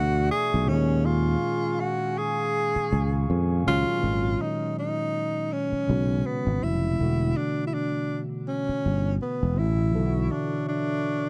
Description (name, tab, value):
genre	R&B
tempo	81 BPM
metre	4/4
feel	swing 54% on 16ths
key	unclear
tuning	A4 = 441 Hz
part	breathy tenor saxophone	melody	0.0-11.3 s	B3 to G#4	-30 LUFS	equal	none
part	overdriven tine electric piano	accompaniment	0.0-11.3 s	A#2 to A4	-33 LUFS	equal	none
part	glass harmonica	sustained chords	0.0-4.0, 9.9-11.3 s	A3 to C#6	-39 LUFS	equal	none
part	sustaining fretless electric bass	bass	0.0-10.3 s	E1 to E#2	-27 LUFS	equal	none
room	light reverb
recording	dry, close 1970s-style studio recording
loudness	-26 LUFS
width	mono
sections	0.0-4.0 A section; 4.0-11.3 B section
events	none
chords	0.0 Bm11; 0.7 D#9sus4; 4.0 G#m11; 7.0 E9sus4; 9.9 Bm11